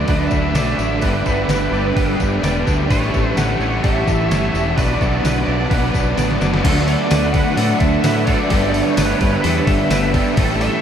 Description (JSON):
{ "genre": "rock, shoegaze and dream pop", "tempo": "128 BPM", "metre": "4/4", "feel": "straight", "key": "D major", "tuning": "A4 = 440 Hz", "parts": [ { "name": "bluesy overdriven lead guitar", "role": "melody", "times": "0.0-10.8 s", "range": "B4 to F#5", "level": "-24 LUFS", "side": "right 1 dB", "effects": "distortion, analog delay" }, { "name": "string machine, violas", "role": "sustained chords", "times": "0.0-10.8 s", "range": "G4 to D6", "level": "-27 LUFS", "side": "equal", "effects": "ensemble chorus" }, { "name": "twangy electric guitar", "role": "arpeggios", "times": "0.0-10.8 s", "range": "A4 to D5", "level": "-28 LUFS", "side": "right 6 dB", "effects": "ensemble chorus, analog delay" }, { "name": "distorted electric guitar", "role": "riff", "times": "0.0-10.8 s", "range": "G2 to D4", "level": "-26 LUFS", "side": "left 1 dB", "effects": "overdrive" }, { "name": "overdriven electric guitar", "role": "riff", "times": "0.0-10.8 s", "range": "G2 to G4", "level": "-23 LUFS", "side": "left 6 dB", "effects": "lush chorus" }, { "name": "overdriven semi-hollow guitar", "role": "riff", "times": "0.0-10.8 s", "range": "G2 to E4", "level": "-23 LUFS", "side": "right 6 dB", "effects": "reverse reverb" }, { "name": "growling fingered electric bass", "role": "bass", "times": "0.0-10.7 s", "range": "E1 to A2", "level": "-21 LUFS", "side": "equal", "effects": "overdrive" }, { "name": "detuned 8-bit digital drum machine", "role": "drums", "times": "0.1-10.7 s", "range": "crash cymbal, hi-hat, kick drum, snare drum", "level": "-21 LUFS", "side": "equal", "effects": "none" }, { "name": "tambourine", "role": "percussion", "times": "0.1-10.0 s", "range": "none", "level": "-36 LUFS", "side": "left 8 dB", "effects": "none" } ], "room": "wet huge ambient reverb, RT60 7.8 s", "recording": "dreamy mix soaked in reverb", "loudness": "-14 LUFS", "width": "side -8 dB against mid", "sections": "0.0-6.6 A section; 6.6-10.8 B section", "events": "drum fill 6.2-6.6", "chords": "0.0 D69; 1.0 G6; 2.9 A7; 4.8 Bm7; 6.6 D69; 8.5 G6" }